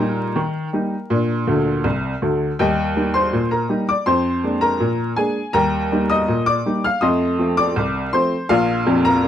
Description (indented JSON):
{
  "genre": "ragtime piano",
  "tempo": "81 BPM",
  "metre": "2/4",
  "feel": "straight",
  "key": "Eb major",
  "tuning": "A4 = 440 Hz",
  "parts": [
    { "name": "clear upright piano", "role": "solo", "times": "0.0-9.3 s", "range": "F1 to F6", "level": "-17 LUFS", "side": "left 1 dB", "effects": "none" }
  ],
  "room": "light reverb",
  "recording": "close, detailed microphones, vinyl crackle",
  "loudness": "-17 LUFS",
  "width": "side -10 dB against mid",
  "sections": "0.0-9.3 A section",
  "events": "upright piano fill 1.5-2.6",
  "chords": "0.0 Eb/Bb; 1.1 Bb; 2.6 Eb; 4.1 Bb7/F; 5.5 Eb; 7.0 F7; 8.5 Bb"
}